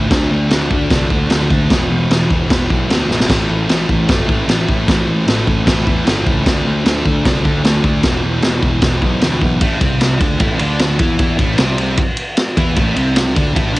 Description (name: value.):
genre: garage rock duo or trio.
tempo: 152 BPM.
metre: 4/4.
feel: straight.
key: A minor from 9.6 s.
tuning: A4 = 439 Hz.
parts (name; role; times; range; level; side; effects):
thick fuzz guitar; riff; 0.0-13.8 s; E2 to E4; -18 LUFS; equal; distortion, cassette tape.
fuzz picked electric bass; bass; 0.0-13.8 s; E1 to E2; -19 LUFS; equal; overdrive.
vintage drum kit; drums; 0.1-13.8 s; crash cymbal, kick drum, ride cymbal, snare drum, splash cymbal; -15 LUFS; equal; cassette tape.
room: little or no reverb.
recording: home recording on cassette, nothing above 10.5 kHz.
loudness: -12 LUFS.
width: side -19 dB against mid.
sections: 0.0-9.6 A section; 9.6-13.8 B section.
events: drum fill 3.1.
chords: 0.1 D5; 1.7 E5; 3.3 A5; 6.5 D5; 8.0 E5; 9.6 Am.